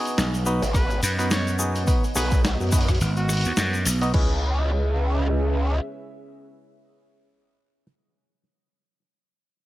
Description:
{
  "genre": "glitch hop",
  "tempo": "106 BPM",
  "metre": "4/4",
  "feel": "swing 56% on 16ths",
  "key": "C# minor",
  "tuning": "A4 = 441 Hz",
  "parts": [
    { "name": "dark analog pad", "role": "sustained chords", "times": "0.0-7.2 s", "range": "B3 to F#5", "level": "-33 LUFS", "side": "right 3 dB", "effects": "chorus, vintage 12-bit sampler grit, sidechain pumping" },
    { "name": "clav", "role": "stabs", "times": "0.0-7.9 s", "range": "B3 to D#5", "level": "-30 LUFS", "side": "equal", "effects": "sidechain pumping, digital delay" },
    { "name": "boom bap sampler-style drum kit", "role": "drums", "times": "0.1-4.3 s", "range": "crash cymbal, hi-hat, rim click, snare drum", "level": "-29 LUFS", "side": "equal", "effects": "none" },
    { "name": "egg shaker", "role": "percussion", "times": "0.1-4.1 s", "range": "none", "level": "-32 LUFS", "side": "left 4 dB", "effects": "none" },
    { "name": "gritty slap bass", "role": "bass", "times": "0.2-4.1 s", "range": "G#1 to F#2", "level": "-23 LUFS", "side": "equal", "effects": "overdrive" },
    { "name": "growl bass", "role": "bass", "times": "0.6-5.8 s", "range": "G#1 to F#2", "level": "-23 LUFS", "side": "equal", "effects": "chorus, overdrive" },
    { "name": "warm trumpet", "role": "melody", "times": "0.7-3.7 s", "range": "F#4 to C#5", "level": "-33 LUFS", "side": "equal", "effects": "digital delay" },
    { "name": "electronic kick drum", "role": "drums", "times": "0.7-4.3 s", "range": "none", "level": "-21 LUFS", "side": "equal", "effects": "none" }
  ],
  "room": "light reverb, digital ambience",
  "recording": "bright 1980s-style digital production",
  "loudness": "-20 LUFS",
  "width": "side -16 dB against mid",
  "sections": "0.0-4.1 A section; 4.1-6.4 B section",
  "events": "drop 0.0-4.1",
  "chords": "0.0 B; 4.1 C#m7",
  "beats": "0.18 0.74 1.31 | 1.88 2.44 3.01 3.58 | 4.14 4.71 5.27 5.84"
}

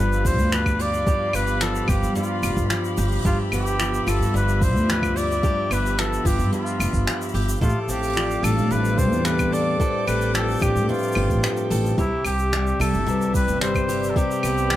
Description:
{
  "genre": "folktronica",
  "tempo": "110 BPM",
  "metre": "4/4",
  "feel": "straight",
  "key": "G mixolydian",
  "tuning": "A4 = 440 Hz",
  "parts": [
    { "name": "clear flugelhorn", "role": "melody", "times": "0.0-14.8 s", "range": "E4 to D5", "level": "-26 LUFS", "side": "equal", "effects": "digital delay, plate reverb" },
    { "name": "warm string quartet", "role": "sustained chords", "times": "0.0-14.8 s", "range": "G4 to D6", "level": "-33 LUFS", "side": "equal", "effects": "plate reverb" },
    { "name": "fingerpicked steel-string acoustic guitar", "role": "arpeggios", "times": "0.0-14.8 s", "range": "G2 to A4", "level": "-26 LUFS", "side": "equal", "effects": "digital delay, plate reverb" },
    { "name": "upright bass", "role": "bass", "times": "0.0-14.8 s", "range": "F1 to A2", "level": "-24 LUFS", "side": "equal", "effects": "tube saturation" },
    { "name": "jazz brush drum kit", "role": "drums", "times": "0.1-14.8 s", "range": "claves, finger snaps, hi-hat, shaker", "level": "-29 LUFS", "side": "left 1 dB", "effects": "none" },
    { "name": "electronic kick drum", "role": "drums", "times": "0.2-14.3 s", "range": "none", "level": "-23 LUFS", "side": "equal", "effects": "none" },
    { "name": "vibraphone with medium mallets", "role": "second line", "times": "7.6-14.8 s", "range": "G3 to G5", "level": "-27 LUFS", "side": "left 3 dB", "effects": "digital delay, plate reverb" }
  ],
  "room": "moderate studio reverb, RT60 0.5 s",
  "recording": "none",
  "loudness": "-19 LUFS",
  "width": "side -13 dB against mid",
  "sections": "0.0-14.8 A section",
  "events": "none",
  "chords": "0.0 G7; 7.6 F6/A; 12.0 Cmaj7",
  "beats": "0.53 | 1.07 1.62 2.16 2.71 | 3.25 3.80 4.34 4.89 | 5.43 5.98 6.53 7.07 | 7.62 8.16 8.71 9.25 | 9.80 10.34 10.89 11.44 | 11.98 12.53 13.07 13.62 | 14.16 14.71"
}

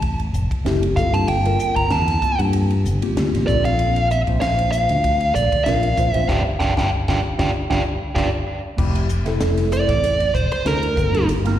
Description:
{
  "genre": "electric jazz fusion",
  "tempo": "96 BPM",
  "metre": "4/4",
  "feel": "swing 54% on 16ths",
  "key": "G dorian",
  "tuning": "A4 = 437 Hz",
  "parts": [
    { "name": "tine electric piano", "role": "accompaniment", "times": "0.0-11.6 s", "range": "A3 to C5", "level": "-25 LUFS", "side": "left 1 dB", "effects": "medium stereo tremolo, phaser, slapback echo" },
    { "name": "fingered electric bass", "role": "bass", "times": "0.0-11.6 s", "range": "F1 to G2", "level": "-20 LUFS", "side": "equal", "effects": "none" },
    { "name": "crisp fusion drum kit", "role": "drums", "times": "0.0-11.6 s", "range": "crash cymbal, hi-hat, kick drum, ride cymbal, snare drum", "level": "-26 LUFS", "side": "left 1 dB", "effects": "none" },
    { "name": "dark smooth lead guitar", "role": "melody", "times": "1.0-11.3 s", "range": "Bb4 to Bb5", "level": "-21 LUFS", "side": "right 2 dB", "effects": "overdrive, slapback echo, tape echo" }
  ],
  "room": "light reverb",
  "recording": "live gig heard through the venue's PA, recital hall reverb",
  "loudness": "-17 LUFS",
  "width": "side -11 dB against mid",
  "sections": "0.0-8.8 A section; 8.8-11.6 B section",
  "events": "band accent 6.3-8.8; tine electric piano fill 7.5-8.8; drum fill 8.2-8.8; lead electric guitar solo 8.8-11.6",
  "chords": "0.0 Fmaj9; 1.0 Gm11; 3.5 Bbmaj9; 6.3 G5; 8.8 Fmaj9; 11.0 Gm11",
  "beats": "0.03 0.66 | 1.28 1.91 2.53 3.16 | 3.79 4.41 5.04 5.66 | 6.29 6.91 7.54 8.16 | 8.79 9.41 10.03 10.66 | 11.28"
}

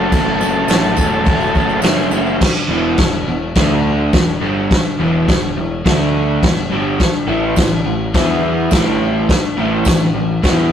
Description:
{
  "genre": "garage rock duo or trio",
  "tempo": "105 BPM",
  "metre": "4/4",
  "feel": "straight",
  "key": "unclear",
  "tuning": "A4 = 440 Hz",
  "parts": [
    { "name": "overdriven combo organ", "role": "melody", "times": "0.0-1.8 s", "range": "A4", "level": "-19 LUFS", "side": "left 1 dB", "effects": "none" },
    { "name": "crunchy overdriven guitar", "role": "riff", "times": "0.0-10.7 s", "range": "E2 to E4", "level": "-17 LUFS", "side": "equal", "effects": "none" },
    { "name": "growling picked electric bass", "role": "bass", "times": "0.0-10.7 s", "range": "E1 to E2", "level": "-23 LUFS", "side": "equal", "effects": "overdrive" },
    { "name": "vintage drum kit", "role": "drums", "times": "0.1-10.6 s", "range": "crash cymbal, kick drum, snare drum", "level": "-16 LUFS", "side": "equal", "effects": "none" },
    { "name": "tambourine", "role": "percussion", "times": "0.1-2.3, 7.6-10.0 s", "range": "none", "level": "-34 LUFS", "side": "right 3 dB", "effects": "none" }
  ],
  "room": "moderate stone room reverb, RT60 1.0 s",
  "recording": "rough rehearsal-room recording, tube saturation",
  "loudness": "-13 LUFS",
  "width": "side -9 dB against mid",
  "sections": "0.0-2.4 A section; 2.4-10.7 B section",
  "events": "none",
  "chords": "0.0 F#m; 2.4 E5; 3.5 D5; 4.1 E5; 5.8 D5; 6.4 E5; 7.3 A5; 8.1 E5; 8.7 A5",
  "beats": "| 0.11 0.68 1.26 1.83 | 2.40 2.98 3.55 4.12 | 4.70 5.27 5.84 6.42 | 6.99 7.57 8.14 8.71 | 9.28 9.85 10.42"
}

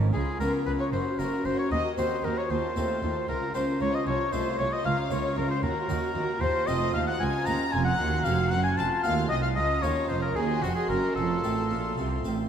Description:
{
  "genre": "classical, baroque-style concerto movement with solo episodes",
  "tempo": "76 BPM (dotted quarters)",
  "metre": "6/8",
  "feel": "straight",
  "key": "Bb minor",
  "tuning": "A4 = 439 Hz",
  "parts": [
    { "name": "harpsichord", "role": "accompaniment", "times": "0.0-12.5 s", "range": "C2 to Gb4", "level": "-32 LUFS", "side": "left 1 dB", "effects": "none" },
    { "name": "clear symphonic double bass section", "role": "bass", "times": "0.0-12.5 s", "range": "F1 to Eb2", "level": "-32 LUFS", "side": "right 3 dB", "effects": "none" },
    { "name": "rich chamber cello section", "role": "bass", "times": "0.0-12.5 s", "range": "C2 to C3", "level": "-33 LUFS", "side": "right 4 dB", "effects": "none" },
    { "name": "bright oboe", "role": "melody", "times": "0.1-12.0 s", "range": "Gb4 to Bb5", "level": "-30 LUFS", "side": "left 2 dB", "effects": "none" },
    { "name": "warm chamber violin section", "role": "melody", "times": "0.1-12.5 s", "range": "A5 to C6", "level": "-43 LUFS", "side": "left 6 dB", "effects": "none" },
    { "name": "rich chamber violin section", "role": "second line", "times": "0.1-12.0 s", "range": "Gb4 to Bb5", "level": "-32 LUFS", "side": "left 2 dB", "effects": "none" },
    { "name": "warm chamber viola section", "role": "accompaniment", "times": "0.1-12.5 s", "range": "F4 to Gb4", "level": "-34 LUFS", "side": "right 2 dB", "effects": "none" }
  ],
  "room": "wet cathedral reverb, RT60 5.4 s",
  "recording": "in a vast, echoing space",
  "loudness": "-24 LUFS",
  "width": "side -8 dB against mid",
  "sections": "0.1-12.5 A section",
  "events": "none",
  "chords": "0.1 Db7; 0.9 Gb; 1.7 Cm7b5/Eb; 2.5 F7/Eb; 3.3 Bbm/Db; 4.1 F7/C; 4.9 Bbm/Db; 5.6 Ebm; 6.4 F7; 7.2 Bbm/Db; 8.0 Cm7b5; 8.8 F; 9.6 Bbm/Db; 10.4 Cdim; 11.2 F",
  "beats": "| 0.14 0.93 | 1.72 2.50 | 3.29 4.07 | 4.85 5.63 | 6.42 7.20 | 7.99 8.78 | 9.57 10.36 | 11.17 11.97"
}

